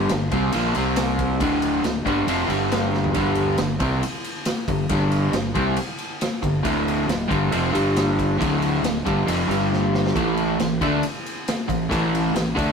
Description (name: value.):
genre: blues rock power trio and southern rock.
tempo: 137 BPM.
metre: 4/4.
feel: straight.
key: unclear.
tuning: A4 = 439 Hz.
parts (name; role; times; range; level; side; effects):
crunchy overdriven guitar; riff; 0.0-12.7 s; D2 to D4; -21 LUFS; equal; none.
fuzz fingered electric bass; bass; 0.0-12.7 s; D1 to D2; -27 LUFS; right 1 dB; overdrive.
raw garage drum kit; drums; 0.1-12.7 s; kick drum, ride cymbal, snare drum, toms; -26 LUFS; equal; none.
room: light reverb.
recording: rough rehearsal-room recording.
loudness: -19 LUFS.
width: side -6 dB against mid.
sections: 0.0-12.7 A section.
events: drum fill 2.9, 9.7-10.2.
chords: 0.0 G5; 0.8 C5; 1.4 D5; 2.5 G5; 6.7 D5; 7.7 G5; 8.4 D5; 9.5 G5; 10.2 A5.